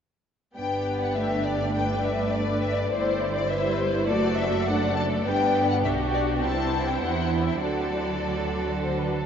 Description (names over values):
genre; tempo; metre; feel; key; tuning
quick classical-period movement for string orchestra; 102 BPM; 4/4; straight; G major; A4 = 441 Hz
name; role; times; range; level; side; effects
rich studio violin section; melody; 0.6-9.3 s; A4 to A5; -29 LUFS; left 5 dB; none
rich studio violin section; second line; 0.6-9.3 s; E4 to D5; -28 LUFS; left 2 dB; none
rich symphonic viola section; accompaniment; 0.6-9.3 s; F#3 to F#4; -28 LUFS; equal; none
rich studio cello section; bass; 0.6-9.3 s; F#2 to E3; -32 LUFS; right 4 dB; none
rich studio double bass section; bass; 0.6-9.3 s; F#1 to E2; -32 LUFS; right 3 dB; none
room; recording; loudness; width
wet huge ambient reverb, RT60 7.7 s; in a vast, echoing space, nothing above 7.5 kHz; -23 LUFS; side -8 dB against mid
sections
0.6-9.3 A section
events
none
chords
0.6 G; 2.9 Am7/G; 4.1 D/F#; 5.3 G; 6.4 Cmaj7; 7.6 D